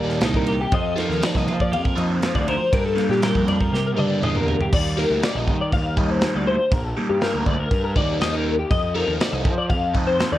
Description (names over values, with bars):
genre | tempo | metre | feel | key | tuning
math rock and midwest emo | 120 BPM | 4/4 | straight | unclear | A4 = 440 Hz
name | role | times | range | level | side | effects
twelve-string electric guitar | accompaniment | 0.0-6.7 s | G2 to Bb4 | -26 LUFS | right 4 dB | lush chorus
twelve-string electric guitar | arpeggios | 0.0-10.4 s | G4 to F5 | -24 LUFS | left 3 dB | ensemble chorus, slapback echo
overdriven semi-hollow guitar | riff | 0.0-10.4 s | F3 to A4 | -25 LUFS | equal | phaser
fuzz picked electric bass | bass | 0.0-10.4 s | Bb1 to F3 | -26 LUFS | equal | overdrive
modern studio drum kit | drums | 0.1-10.3 s | crash cymbal, kick drum, ride cymbal, snare drum, toms | -24 LUFS | equal | none
room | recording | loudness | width
moderate studio reverb, RT60 0.8 s | worn, warbling old tape, cassette tape, warbly pitch drift | -18 LUFS | side -14 dB against mid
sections
0.0-4.7 A section; 4.7-10.4 B section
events
drum fill 3.7-4.7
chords
0.0 Ebmaj7; 0.7 F7sus4; 2.7 Gm7; 4.7 Ebmaj7; 8.7 F7sus4